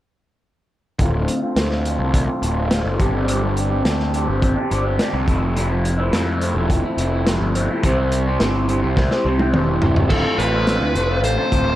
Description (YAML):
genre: psychedelic rock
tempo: 106 BPM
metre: 4/4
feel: straight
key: D minor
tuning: A4 = 440 Hz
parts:
  - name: electric guitar through a small old amp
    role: riff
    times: 1.0-11.8 s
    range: D2 to C5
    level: -21 LUFS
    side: equal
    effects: phaser, low-pass filter
  - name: fuzz picked electric bass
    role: bass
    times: 1.0-11.8 s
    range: D1 to F2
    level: -21 LUFS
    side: equal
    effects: overdrive
  - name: crunchy breakbeat drum kit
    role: drums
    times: 1.0-11.7 s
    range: crash cymbal, hi-hat, kick drum, snare drum, toms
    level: -22 LUFS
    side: equal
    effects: none
  - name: string machine, cellos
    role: sustained chords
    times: 5.9-11.8 s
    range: C4 to E5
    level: -30 LUFS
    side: right 3 dB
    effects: none
  - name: fuzz lead guitar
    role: melody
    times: 10.1-11.8 s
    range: A4 to C5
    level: -21 LUFS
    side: equal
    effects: distortion, tape echo
room: little or no reverb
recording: none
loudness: -17 LUFS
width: side -14 dB against mid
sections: 1.0-10.1 A section; 10.1-11.8 B section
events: filter sweep 1.0-10.1; drum fill 9.0-10.1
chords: 1.0 Dm7; 3.0 Gsus4; 5.3 Fmaj7; 7.8 C; 10.1 Dm7